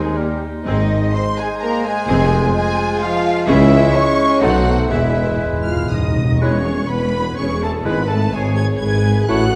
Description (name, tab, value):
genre	classical, dramatic, fast romantic movement for symphony orchestra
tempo	118-130 BPM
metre	3/4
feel	rubato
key	E major from 3.5 s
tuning	A4 = 440 Hz
part	warm symphonic violin section	melody	0.0-9.6 s	Eb5 to G#6	-28 LUFS	equal	none
part	bright flute section	second line	0.0-9.6 s	G#4 to C#6	-27 LUFS	equal	none
part	clear clarinet	second line	0.0-9.4 s	Eb4 to F4	-29 LUFS	equal	none
part	warm oboe	second line	0.0-9.5 s	Bb4 to C#5	-30 LUFS	equal	none
part	warm symphonic violin section	second line	0.0-9.6 s	B3 to E5	-31 LUFS	equal	none
part	clear bassoon	accompaniment	0.0-9.4 s	G3 to A3	-27 LUFS	equal	none
part	clear symphonic viola section	accompaniment	0.0-9.6 s	Bb3 to C#5	-28 LUFS	equal	none
part	dark French horn section	sustained chords	0.0-9.6 s	Eb3 to G#4	-26 LUFS	equal	none
part	mellow tuba	bass	0.0-9.6 s	E1 to Eb2	-26 LUFS	equal	none
part	rich symphonic cello section	bass	0.0-9.6 s	Eb2 to C#3	-25 LUFS	equal	none
part	rich symphonic double bass section	bass	0.0-9.6 s	E1 to Eb2	-24 LUFS	equal	none
part	timpani	percussion	4.9-8.5 s	E2 to G#2	-24 LUFS	equal	none
room	wet scoring stage reverb, RT60 1.7 s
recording	dark, warm production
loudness	-17 LUFS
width	mono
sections	0.0-6.4 A section; 6.4-9.6 B section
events	timpani fill 4.9-6.4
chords	0.2 Eb; 0.7 Ab; 2.1 Fm; 3.5 C#m; 4.4 B7b9; 4.9 E; 7.9 E/G#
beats	0.17 | 0.66 1.14 1.62 | 2.09 2.56 3.02 | 3.48 3.95 4.42 | 4.91 5.42 5.91 | 6.42 6.90 7.38 | 7.86 8.34 8.81 | 9.28